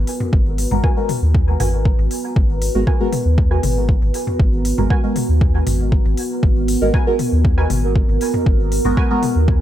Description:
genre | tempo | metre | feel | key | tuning
dub techno | 118 BPM | 4/4 | straight | G# minor | A4 = 439 Hz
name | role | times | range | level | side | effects
deep dark ambient pad | sustained chords | 0.0-9.6 s | B3 to B4 | -23 LUFS | right 2 dB | chorus, built-in reverb, sidechain pumping
soft dub sub bass | bass | 0.0-9.6 s | G#1 to D#2 | -18 LUFS | equal | sidechain pumping
electronic hi-hat | drums | 0.1-9.3 s | none | -30 LUFS | left 2 dB | none
electronic toms | percussion | 0.2-9.6 s | none | -26 LUFS | left 3 dB | sidechain pumping on toms, dub echo
electronic kick drum | drums | 0.3-9.6 s | none | -16 LUFS | equal | none
deep mellow chord stab | stabs | 0.7-9.2 s | G#3 to A#4 | -23 LUFS | right 1 dB | chorus, phaser, sidechain pumping, dub echo
filtered dub chord stab | riff | 0.8-9.1 s | F#4 to G#5 | -30 LUFS | right 3 dB | chorus, sidechain pumping, dub echo
room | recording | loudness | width
digital ambience | echo-heavy mix | -14 LUFS | side -12 dB against mid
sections
0.0-9.6 A section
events
none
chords
0.0 G#m9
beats
| 0.33 0.84 1.34 1.85 | 2.36 2.87 3.38 3.89 | 4.40 4.91 5.41 5.92 | 6.43 6.94 7.45 7.96 | 8.46 8.97 9.48

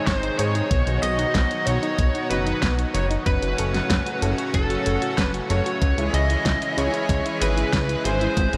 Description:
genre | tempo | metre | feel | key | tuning
synthwave | 94 BPM | 4/4 | straight | C# minor | A4 = 440 Hz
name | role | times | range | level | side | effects
biting lead guitar | melody | 0.0-8.6 s | A4 to D#5 | -29 LUFS | equal | overdrive, tape echo
FM electric piano with soft pad layer | second line | 0.0-8.6 s | A4 to D#5 | -34 LUFS | equal | chorus, phaser, cassette tape, tape echo
lush unison pad | sustained chords | 0.0-8.6 s | A2 to G#4 | -30 LUFS | equal | chorus, sidechain pumping
soft round pluck | arpeggios | 0.0-8.6 s | B3 to A4 | -34 LUFS | equal | chorus, tape echo
chorused synth bass | bass | 0.1-8.6 s | F#1 to G#2 | -27 LUFS | equal | tube saturation
electronic kick drum | drums | 0.1-8.5 s | none | -27 LUFS | equal | studio ambience
pop drum kit | drums | 0.1-8.6 s | hi-hat, snare drum | -32 LUFS | equal | studio ambience
room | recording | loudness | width
moderate huge ambient reverb, RT60 8.6 s | dreamy mix soaked in reverb | -22 LUFS | mono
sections
0.0-8.6 A section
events
none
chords
0.0 G#; 0.7 B; 3.3 F#m; 5.8 C#m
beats
0.07 | 0.71 1.35 1.99 2.63 | 3.27 3.90 4.54 5.18 | 5.82 6.46 7.09 7.73 | 8.37

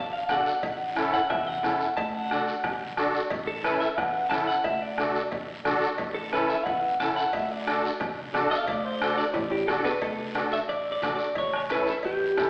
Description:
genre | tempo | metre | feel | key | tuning
latin, cumbia | 179 BPM | 4/4 | straight | D major | A4 = 440 Hz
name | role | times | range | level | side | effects
clean electric guitar | melody | 0.0-12.5 s | G4 to A5 | -30 LUFS | equal | spring reverb
upright bass | bass | 0.0-12.5 s | A1 to E2 | -43 LUFS | equal | none
musette accordion | accompaniment | 0.3-12.5 s | C#4 to A4 | -32 LUFS | equal | none
bombo | percussion | 0.3-12.5 s | none | -36 LUFS | equal | none
congas | percussion | 0.3-12.5 s | none | -48 LUFS | equal | none
guiro | percussion | 0.3-12.5 s | none | -46 LUFS | equal | none
timbales and cowbell | percussion | 0.3-12.5 s | none | -39 LUFS | equal | none
room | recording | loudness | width
wet recital hall reverb, RT60 1.4 s | recorded in a church or concert hall, AM radio sound | -27 LUFS | mono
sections
0.0-10.0 A section; 10.0-12.5 B section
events
clean electric guitar solo 0.0-10.0; drum fill 9.4-10.0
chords
0.0 D; 0.6 A; 2.0 D; 3.3 A; 4.7 D; 6.0 A; 7.3 D; 11.4 A7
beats
0.30 | 0.63 0.97 1.30 1.64 | 1.97 2.31 2.64 2.98 | 3.31 3.65 3.98 4.32 | 4.66 4.99 5.33 5.66 | 6.00 6.33 6.67 7.00 | 7.34 7.67 8.01 8.34 | 8.68 9.02 9.35 9.69 | 10.02 10.36 10.70 11.03 | 11.37 11.70 12.04 12.37

